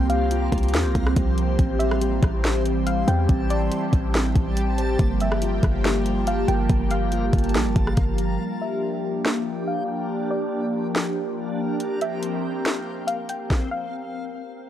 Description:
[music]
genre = hip hop, atmospheric cloud-rap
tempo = 141 BPM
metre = 4/4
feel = half-time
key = Bb lydian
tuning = A4 = 440 Hz
[part]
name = airy breathy pad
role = sustained chords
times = 0.0-13.5 s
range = E3 to G4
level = -26 LUFS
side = equal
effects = chorus, phaser, sidechain pumping, low-pass filter
[part]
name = muted felt-like synth keys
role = arpeggios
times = 0.0-8.4 s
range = Bb3 to C5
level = -32 LUFS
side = right 3 dB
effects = chorus, low-pass filter, tape echo
[part]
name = warm 808-style bass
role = bass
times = 0.0-8.4 s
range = G1 to E2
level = -23 LUFS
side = equal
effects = none
[part]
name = backwards swelling texture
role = texture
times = 0.0-14.7 s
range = C4 to Bb5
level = -35 LUFS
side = left 1 dB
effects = built-in reverb
[part]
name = soft round pluck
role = melody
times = 0.1-13.9 s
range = D5 to G5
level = -31 LUFS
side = left 1 dB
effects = chorus, low-pass filter, tape echo
[part]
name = trap drum kit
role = drums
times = 0.1-13.6 s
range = hi-hat, kick drum, rim click, snare drum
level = -23 LUFS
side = equal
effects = overdrive
[sound]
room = little or no reverb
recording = dry, gritty hardware recording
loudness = -20 LUFS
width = side -11 dB against mid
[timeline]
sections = 0.0-8.4 A section; 8.4-14.7 B section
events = filter sweep 8.4-14.7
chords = 0.0 C7sus4; 1.6 Am7; 5.0 Gm9; 8.4 Bb6; 11.8 C7sus4

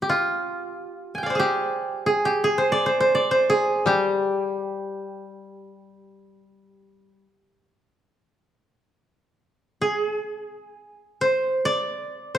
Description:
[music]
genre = japanese traditional, Japanese chamber music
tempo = free time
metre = none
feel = none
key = G in sen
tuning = A4 = 440 Hz
[part]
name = koto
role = melody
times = 0.0-12.4 s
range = F4 to Ab5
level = -22 LUFS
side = right 1 dB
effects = none
[part]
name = koto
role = accompaniment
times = 3.9-7.2 s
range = G3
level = -25 LUFS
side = left 5 dB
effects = none
[sound]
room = moderate recital hall reverb, RT60 1.5 s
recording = dark, warm production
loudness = -21 LUFS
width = side -10 dB against mid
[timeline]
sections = 0.0-12.4 A section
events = none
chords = none

